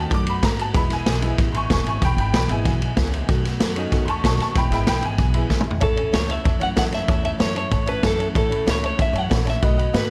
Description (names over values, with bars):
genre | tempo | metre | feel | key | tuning
rockabilly | 189 BPM | 4/4 | straight | unclear | A4 = 440 Hz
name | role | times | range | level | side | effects
picked steel-string acoustic guitar | accompaniment | 0.0-10.1 s | E2 to F#4 | -32 LUFS | equal | none
tack piano | accompaniment | 0.0-10.0 s | G#3 to D6 | -30 LUFS | equal | plate reverb
upright bass | bass | 0.0-10.1 s | E1 to A2 | -27 LUFS | equal | none
vintage drum kit | drums | 0.1-10.0 s | kick drum, ride cymbal, snare drum, toms | -24 LUFS | equal | none
electric guitar at the edge of break-up | melody | 5.8-10.1 s | A4 to F#5 | -27 LUFS | equal | plate reverb, analog delay
room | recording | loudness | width
light reverb | none | -21 LUFS | mono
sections
0.0-5.8 A section; 5.8-10.1 B section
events
honky-tonk piano solo 0.0-5.8; drum fill 5.5-5.8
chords
0.0 B7; 0.7 E; 3.3 B7; 4.6 E; 5.8 A